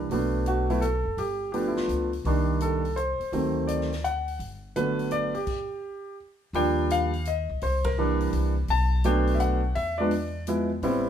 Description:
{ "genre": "jazz piano trio", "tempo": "168 BPM", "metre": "3/4", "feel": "swing 66% on 8ths", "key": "G major", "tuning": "A4 = 445 Hz", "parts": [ { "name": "warm concert grand piano", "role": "melody", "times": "0.0-11.1 s", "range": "D3 to A5", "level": "-26 LUFS", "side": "equal", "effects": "none" }, { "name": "upright bass", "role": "bass", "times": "0.0-11.1 s", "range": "F#1 to E2", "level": "-28 LUFS", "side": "equal", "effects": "none" }, { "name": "swinging big-band drum kit", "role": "drums", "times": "0.1-10.9 s", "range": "crash cymbal, hi-hat, kick drum, ride cymbal, snare drum", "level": "-41 LUFS", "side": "left 3 dB", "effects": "none" } ], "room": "moderate stone room reverb, RT60 1.1 s", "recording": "band playing live in one room", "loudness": "-24 LUFS", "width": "side -9 dB against mid", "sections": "0.0-6.5 A section; 6.5-11.1 B section", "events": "stop 5.5-6.5; band accent 7.8", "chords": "0.1 Bm7; 1.2 G7; 2.3 Cm7; 3.3 D7b9; 4.4 Gmaj7; 6.5 Ebmaj9; 7.6 C9; 8.7 Bm7; 9.8 E7b9" }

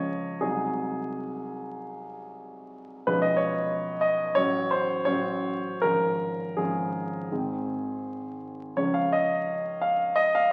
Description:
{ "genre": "classical, romantic character piece for solo piano", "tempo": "79-94 BPM", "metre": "4/4", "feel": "rubato", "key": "Db major", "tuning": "A4 = 440 Hz", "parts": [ { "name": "warm concert grand piano", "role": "solo", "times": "0.0-10.5 s", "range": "Ab1 to F5", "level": "-28 LUFS", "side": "equal", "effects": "none" } ], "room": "moderate scoring stage reverb, RT60 1.6 s", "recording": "very old 78 rpm record, vinyl crackle", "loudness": "-27 LUFS", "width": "mono", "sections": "0.0-10.5 A section", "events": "none", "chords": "0.4 Ab7/C; 3.1 Db7/Cb; 4.4 Gbm/A; 5.8 Db/Ab; 7.3 Ab; 8.8 Db" }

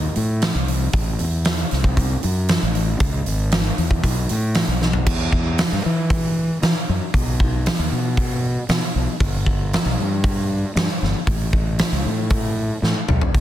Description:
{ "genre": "quiet-loud alternative rock", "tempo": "116 BPM", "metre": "4/4", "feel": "straight", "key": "E dorian from 5.1 s", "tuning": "A4 = 440 Hz", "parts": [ { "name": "fuzz fingered electric bass", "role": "bass", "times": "0.0-13.4 s", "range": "E1 to E3", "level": "-21 LUFS", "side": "equal", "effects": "overdrive" }, { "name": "huge arena drum kit", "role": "drums", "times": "0.2-13.4 s", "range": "crash cymbal, hi-hat, kick drum, snare drum, toms", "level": "-20 LUFS", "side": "equal", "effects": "none" } ], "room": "little or no reverb", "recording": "dense, heavily limited modern master", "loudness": "-18 LUFS", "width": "side -12 dB against mid", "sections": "0.0-5.1 A section; 5.1-13.4 B section", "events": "drum fill 4.8, 12.8-13.3", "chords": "none" }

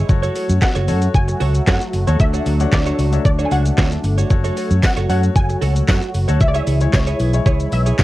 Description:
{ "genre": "dance-pop", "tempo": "114 BPM", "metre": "4/4", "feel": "straight", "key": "F# minor", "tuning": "A4 = 439 Hz", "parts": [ { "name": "sweeping resonant pad", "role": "sustained chords", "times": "0.0-8.0 s", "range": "E3 to F#4", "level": "-26 LUFS", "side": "left 1 dB", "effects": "chorus, sidechain pumping, cassette tape" }, { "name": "direct-recorded clean electric guitar", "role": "riff", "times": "0.0-8.0 s", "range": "D4 to C#5", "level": "-26 LUFS", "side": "right 9 dB", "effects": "analog chorus, cassette tape" }, { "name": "clear grand piano", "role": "accompaniment", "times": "0.1-8.0 s", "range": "D4 to F#5", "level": "-27 LUFS", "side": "left 10 dB", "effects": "sidechain pumping, cassette tape" }, { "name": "vintage muted fingered electric bass", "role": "bass", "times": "0.1-8.0 s", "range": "F#1 to F#2", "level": "-17 LUFS", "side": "equal", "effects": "sidechain pumping" }, { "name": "smooth R&B drum kit", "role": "drums", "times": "0.1-8.0 s", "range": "handclaps, hi-hat, kick drum, shaker, snare drum", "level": "-17 LUFS", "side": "equal", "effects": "cassette tape" }, { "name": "wide unison pluck", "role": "melody", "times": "0.6-8.0 s", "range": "C#5 to G#5", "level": "-26 LUFS", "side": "equal", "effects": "ensemble chorus, cassette tape" }, { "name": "tambourine", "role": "percussion", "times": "4.8-8.0 s", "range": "none", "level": "-37 LUFS", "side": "left 10 dB", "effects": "none" } ], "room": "little or no reverb", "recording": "home recording on cassette", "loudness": "-14 LUFS", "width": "side -16 dB against mid", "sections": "0.0-8.0 A section", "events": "none", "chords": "0.1 F#m; 2.2 Dmaj7; 4.3 F#m; 6.4 C#m" }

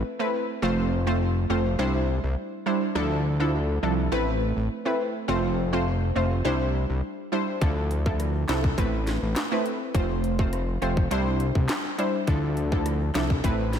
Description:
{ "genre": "dancehall", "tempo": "103 BPM", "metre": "4/4", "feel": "straight", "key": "unclear", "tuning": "A4 = 440 Hz", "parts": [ { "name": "analog pluck", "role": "accompaniment", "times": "0.0-13.8 s", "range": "F3 to C5", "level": "-26 LUFS", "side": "right 1 dB", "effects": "chorus, sidechain pumping" }, { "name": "fat analog bass", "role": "bass", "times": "0.0-13.8 s", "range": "F1 to D2", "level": "-26 LUFS", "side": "equal", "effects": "none" }, { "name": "island pop drum kit", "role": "drums", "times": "7.6-13.8 s", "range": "handclaps, hi-hat, kick drum, rim click, snare drum", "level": "-27 LUFS", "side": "equal", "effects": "none" } ], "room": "moderate lush hall reverb, RT60 1.8 s", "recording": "dreamy mix soaked in reverb", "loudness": "-23 LUFS", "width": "side -8 dB against mid", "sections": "0.0-13.8 A section", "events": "none", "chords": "0.0 Amadd9; 0.6 F; 1.8 Cadd9; 3.0 Dmadd9; 4.1 Amadd9; 5.3 F; 6.5 Cadd9; 7.6 Dmadd9; 8.8 Amadd9; 9.9 F; 11.1 Cadd9; 12.3 Dmadd9" }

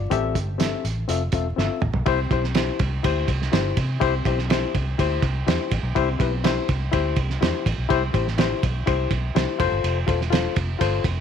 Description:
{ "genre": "uptempo 1960s-style soul", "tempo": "124 BPM", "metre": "4/4", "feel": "straight", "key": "C major", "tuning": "A4 = 440 Hz", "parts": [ { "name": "barky reed electric piano", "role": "accompaniment", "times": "0.0-11.1 s", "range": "A2 to E5", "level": "-25 LUFS", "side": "left 11 dB", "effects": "overdrive" }, { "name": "vintage muted fingered electric bass", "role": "bass", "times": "0.0-11.2 s", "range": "E1 to C3", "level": "-25 LUFS", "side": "equal", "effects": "none" }, { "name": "cloth-damped thuddy drum kit", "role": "drums", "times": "0.1-11.2 s", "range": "hi-hat, kick drum, ride cymbal, snare drum, toms", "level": "-24 LUFS", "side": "right 4 dB", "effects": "none" } ], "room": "light reverb, small room ambience", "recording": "1960s-style stereo, vinyl crackle", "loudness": "-20 LUFS", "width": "side -8 dB against mid", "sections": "0.0-2.1 A section; 2.1-11.2 B section", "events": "drum fill 1.6-2.1", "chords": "0.1 Am7; 1.1 Fmaj7; 2.1 C; 9.6 F" }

